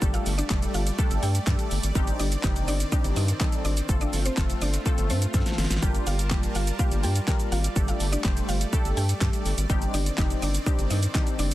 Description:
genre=dance-pop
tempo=124 BPM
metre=4/4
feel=straight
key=unclear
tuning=A4 = 440 Hz
part: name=funky polysynth comp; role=accompaniment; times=0.0-11.5 s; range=F3 to C5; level=-33 LUFS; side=left 1 dB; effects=chorus, sidechain pumping
part: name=supersaw pad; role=sustained chords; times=0.0-11.5 s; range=Eb3 to A5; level=-36 LUFS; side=right 1 dB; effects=sidechain pumping
part: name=round analog bass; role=bass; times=0.0-11.5 s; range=F1 to G2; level=-26 LUFS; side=equal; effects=sidechain pumping
part: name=pop drum kit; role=drums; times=0.0-11.5 s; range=handclaps, hi-hat, kick drum, shaker, snare drum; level=-26 LUFS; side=equal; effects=none
part: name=downlifter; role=sound effects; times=0.0-2.0 s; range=none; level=barely audible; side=none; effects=none
part: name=mallet-like synth pluck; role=melody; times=0.1-11.5 s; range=C4 to G5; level=-34 LUFS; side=equal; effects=chorus, sidechain pumping, dub echo
room=digital ambience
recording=dense, heavily limited modern master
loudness=-22 LUFS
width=side -15 dB against mid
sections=0.0-11.5 A section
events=drum fill 5.3-5.8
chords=0.0 Dsus4; 2.0 Cmadd9; 3.9 F; 5.8 Gm7; 7.8 Dsus4; 9.7 Cmadd9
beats=| 0.02 0.50 0.99 1.47 | 1.95 2.44 2.92 3.41 | 3.89 4.37 4.86 5.34 | 5.83 6.31 6.79 7.28 | 7.76 8.24 8.73 9.21 | 9.70 10.18 10.66 11.15

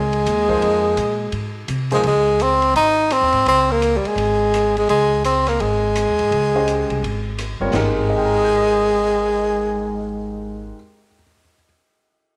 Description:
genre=modal jazz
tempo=169 BPM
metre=4/4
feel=swing 63% on 8ths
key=unclear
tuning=A4 = 441 Hz
part: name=warm tenor saxophone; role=melody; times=0.0-10.7 s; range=G3 to Eb4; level=-19 LUFS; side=equal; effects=slapback echo
part: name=upright bass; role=bass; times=0.0-10.7 s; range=G1 to C3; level=-28 LUFS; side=equal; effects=none
part: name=open jazz drum kit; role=drums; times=0.1-7.8 s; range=crash cymbal, hi-hat, kick drum, ride cymbal, rim click, snare drum, toms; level=-33 LUFS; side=equal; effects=none
part: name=warm concert grand piano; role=accompaniment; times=0.5-2.0, 6.5-11.6 s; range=Db2 to Eb7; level=-28 LUFS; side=equal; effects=none
room=moderate echo chamber reverb, RT60 1.4 s, studio ambience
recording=none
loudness=-18 LUFS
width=mono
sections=0.0-2.0 A section; 2.0-7.7 B section; 7.7-10.6 C section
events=none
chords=0.0 Dbmaj9; 2.0 Dbmaj7(no3); 7.7 Abmaj9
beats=0.26 | 0.62 0.97 1.33 1.69 | 2.04 2.40 2.75 3.11 | 3.46 3.82 4.18 4.53 | 4.89 5.24 5.60 5.96 | 6.31 6.67 7.02 7.38 | 7.73 8.09 8.45 8.80 | 9.16 9.51 9.87 10.22

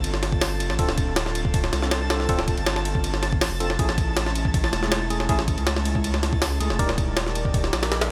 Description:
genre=drum and bass, jungle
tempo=160 BPM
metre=4/4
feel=straight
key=unclear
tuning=A4 = 440 Hz
part: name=airy breathy pad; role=sustained chords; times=0.0-8.1 s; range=G#3 to D5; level=-34 LUFS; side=equal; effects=chorus
part: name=saturated sub bass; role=bass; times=0.0-8.1 s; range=D1 to C#2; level=-29 LUFS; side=equal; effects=none
part: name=jungle sampler-style drum kit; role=drums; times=0.0-8.1 s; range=hi-hat, kick drum, ride cymbal, snare drum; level=-26 LUFS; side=equal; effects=none
part: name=twinkling granular texture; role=texture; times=0.0-8.1 s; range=A5 to A6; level=-36 LUFS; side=equal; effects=built-in reverb
part: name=bright tine electric piano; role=stabs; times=0.8-8.0 s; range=A3 to D5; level=-34 LUFS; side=equal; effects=vintage 12-bit sampler grit, dub echo
room=light reverb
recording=none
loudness=-23 LUFS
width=mono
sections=0.0-8.1 A section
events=none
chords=0.0 Dm7; 3.8 Amaj7; 6.8 Ebmaj7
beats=0.04 0.41 | 0.79 1.17 1.54 1.92 | 2.29 2.67 3.04 3.42 | 3.79 4.17 4.54 4.92 | 5.29 5.67 6.04 6.42 | 6.79 7.17 7.54 7.92

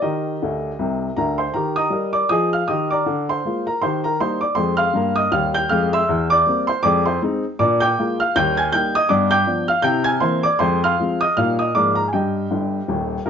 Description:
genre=jazz, stride piano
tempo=159 BPM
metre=4/4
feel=swing 59% on 8ths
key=Eb major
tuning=A4 = 439 Hz
part: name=warm upright piano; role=solo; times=0.0-13.3 s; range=Eb1 to Ab6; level=-17 LUFS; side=equal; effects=none
room=moderate club reverb, RT60 0.6 s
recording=nothing above 7.5 kHz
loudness=-17 LUFS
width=side -7 dB against mid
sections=0.0-1.5 A section; 1.5-13.3 A section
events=upright piano fill 0.4-1.5, 12.5-13.3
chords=0.0 Eb; 3.1 Bb7/D; 3.8 Eb; 4.6 Fm; 6.1 C7/E; 6.8 Fm7; 7.6 Bb7; 8.3 Eb; 9.1 G7; 9.9 C7; 10.6 Fm; 11.4 Eb/Bb; 11.7 Bb7/Ab; 12.1 Eb/G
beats=| 0.04 0.41 0.79 1.17 | 1.55 1.93 2.31 2.68 | 3.06 3.44 3.82 4.19 | 4.57 4.95 5.33 5.71 | 6.08 6.46 6.84 7.22 | 7.59 7.97 8.35 8.73 | 9.11 9.48 9.86 10.24 | 10.62 10.99 11.37 11.75 | 12.12 12.50 12.88 13.26

